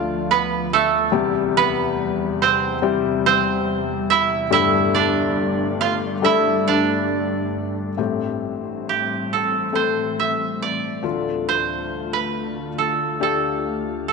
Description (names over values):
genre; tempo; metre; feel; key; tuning
pop ballad; 69 BPM; 4/4; straight; A minor; A4 = 440 Hz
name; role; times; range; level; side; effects
koto; melody; 0.0-14.1 s; A3 to F5; -20 LUFS; right 8 dB; none
felt-muted upright piano; accompaniment; 0.0-14.1 s; G1 to D5; -23 LUFS; left 10 dB; none
glassy FM pad; sustained chords; 0.0-14.1 s; D2 to F4; -28 LUFS; left 1 dB; ensemble chorus, built-in reverb
room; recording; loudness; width
wet echo chamber reverb, RT60 2.6 s; 1960s-style stereo with parts hard left and right, nothing above 10.6 kHz; -18 LUFS; side -4 dB against mid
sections
0.0-8.0 A section; 8.0-14.1 B section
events
none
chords
0.0 Dm; 1.1 C/E; 4.5 Gsus2; 8.0 Am7; 11.0 Dm